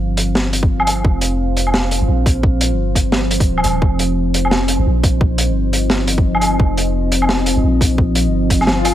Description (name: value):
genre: half-time drum and bass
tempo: 173 BPM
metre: 4/4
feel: swing 60% on 16ths, half-time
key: unclear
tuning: A4 = 440 Hz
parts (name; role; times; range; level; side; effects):
- deep dark ambient pad; sustained chords; 0.0-8.9 s; F3 to F5; -20 LUFS; left 1 dB; chorus, built-in reverb, sidechain pumping
- long sustained 808-style bass; bass; 0.0-8.9 s; Eb1 to Bb1; -18 LUFS; equal; none
- crunchy breakbeat drum kit; drums; 0.2-8.9 s; hi-hat, snare drum, woodblock; -18 LUFS; equal; none
- electronic kick drum; drums; 0.6-8.6 s; none; -15 LUFS; equal; none
- swell; sound effects; 8.8-8.9 s; none; -19 LUFS; left 8 dB; none
room: light reverb, small room reverb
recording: none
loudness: -13 LUFS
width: side -12 dB against mid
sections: 0.0-8.9 A section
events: swell 8.8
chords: 0.0 F5